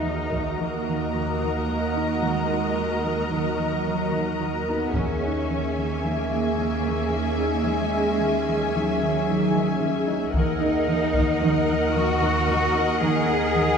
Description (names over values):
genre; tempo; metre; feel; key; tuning
cinematic, suspense film score; 111 BPM; 5/4; straight; Eb phrygian; A4 = 440 Hz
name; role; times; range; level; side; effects
rich symphonic violin section; second line; 0.0-13.8 s; Eb5 to Bb5; -30 LUFS; left 4 dB; none
rich symphonic viola section; accompaniment; 0.0-13.8 s; Db4 to Bb4; -29 LUFS; left 1 dB; none
evolving wavetable pad; sustained chords; 0.0-13.8 s; Ab4 to Ab5; -30 LUFS; equal; chorus, built-in reverb, phaser
warm symphonic cello section; riff; 0.0-13.7 s; Eb3 to Eb4; -28 LUFS; right 1 dB; none
clear symphonic cello section; bass; 0.0-13.8 s; Gb3 to Ab4; -27 LUFS; right 2 dB; none
rich symphonic double bass section; bass; 0.0-13.8 s; Eb2; -29 LUFS; right 2 dB; none
taiko ensemble; drums; 0.3-0.6, 4.9-6.0, 10.3-11.4 s; none; -29 LUFS; left 1 dB; none
rich studio violin section; texture; 4.9-10.0 s; Db6 to Ab6; -41 LUFS; left 5 dB; none
room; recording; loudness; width
wet scoring stage reverb, RT60 1.9 s; heard from further back in the room; -21 LUFS; side -6 dB against mid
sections
0.0-13.8 A section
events
none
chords
0.0 Ebm; 4.9 Dbm/Eb; 10.3 Ebm